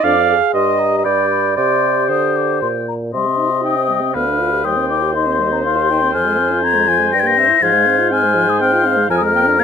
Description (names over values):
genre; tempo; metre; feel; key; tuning
quick classical-period movement for wind quintet; 120 BPM; 3/4; rubato; C minor; A4 = 440 Hz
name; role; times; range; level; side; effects
mellow hollow concert flute; melody; 0.0-9.6 s; Bb5 to Bb6; -17 LUFS; left 8 dB; none
warm oboe; second line; 0.0-9.6 s; Bb4 to G5; -21 LUFS; left 5 dB; none
warm French horn; accompaniment; 0.0-9.6 s; F3 to Ab4; -23 LUFS; left 2 dB; none
warm clarinet; accompaniment; 0.0-9.6 s; C5 to Bb5; -19 LUFS; right 9 dB; none
dark bassoon; bass; 0.0-9.6 s; D2 to D3; -20 LUFS; right 1 dB; none
room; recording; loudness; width
little or no reverb; close, detailed microphones; -13 LUFS; side -7 dB against mid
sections
0.0-3.1 A section; 3.1-9.6 B section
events
none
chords
0.0 Ddim/F; 0.5 Cm/G; 1.0 G; 1.6 C5; 3.1 Cm; 4.1 G7/D; 4.6 Cm/Eb; 6.1 Fm; 7.1 C7/G; 7.6 Fm/Ab; 9.1 Bb7/F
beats
| 0.04 0.53 1.05 | 1.57 2.09 2.62 | 3.14 3.65 4.15 | 4.65 5.15 5.65 | 6.14 6.63 7.13 | 7.62 8.11 8.61 | 9.10 9.60